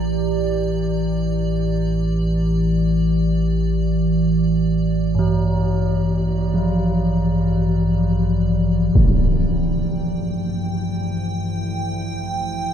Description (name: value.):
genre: dark ambient drone.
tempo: free time.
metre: none.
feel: none.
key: unclear.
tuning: A4 = 440 Hz.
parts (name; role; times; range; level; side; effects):
quartz singing bowl; arpeggios; 0.0-10.7 s; G2 to G4; -22 LUFS; equal; ping-pong delay.
deep rumbling drone; drone; 0.0-12.7 s; A1 to E3; -20 LUFS; equal; built-in reverb, phaser.
icy glass pad; texture; 0.0-12.7 s; D5 to G5; -32 LUFS; right 5 dB; chorus, built-in reverb, shimmer reverb.
deep dark ambient pad; sustained chords; 10.6-12.7 s; A3 to C5; -38 LUFS; right 2 dB; chorus, built-in reverb, shimmer reverb.
impact; percussion; 9.0-9.1 s; none; -20 LUFS; equal; low-pass filter on sfx.
room: moderate huge ambient reverb, RT60 8.1 s.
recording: dark, warm production.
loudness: -18 LUFS.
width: side -9 dB against mid.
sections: 0.0-9.0 A section; 9.0-12.7 B section.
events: fade-out on ambient pad 0.0-9.0.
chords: 0.0 Fadd9/A; 9.0 Fadd9/A (rootless).